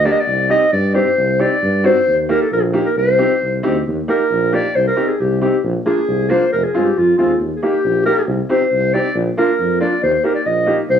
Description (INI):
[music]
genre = klezmer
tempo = 135 BPM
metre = 2/4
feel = straight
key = C minor, Eb major from 3.9 s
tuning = A4 = 440 Hz
[part]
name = mellow clarinet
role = melody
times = 0.0-11.0 s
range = F4 to Eb5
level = -16 LUFS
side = equal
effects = cassette tape
[part]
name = clear upright piano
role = accompaniment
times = 0.0-10.8 s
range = Ab3 to G4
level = -20 LUFS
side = equal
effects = cassette tape
[part]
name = mellow tuba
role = bass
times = 0.0-11.0 s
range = F1 to G2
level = -20 LUFS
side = equal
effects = none
[sound]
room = light reverb, small room ambience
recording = home recording on cassette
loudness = -14 LUFS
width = side -8 dB against mid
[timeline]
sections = 0.0-3.9 A section; 3.9-10.9 B section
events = speeding up 0.0-11.0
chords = 0.3 Cm; 2.1 Eb; 3.0 Cm; 3.9 Eb; 4.8 Cm; 5.6 Bb; 6.5 Fm; 7.4 Eb; 8.3 Cm; 9.2 Bb; 10.0 Eb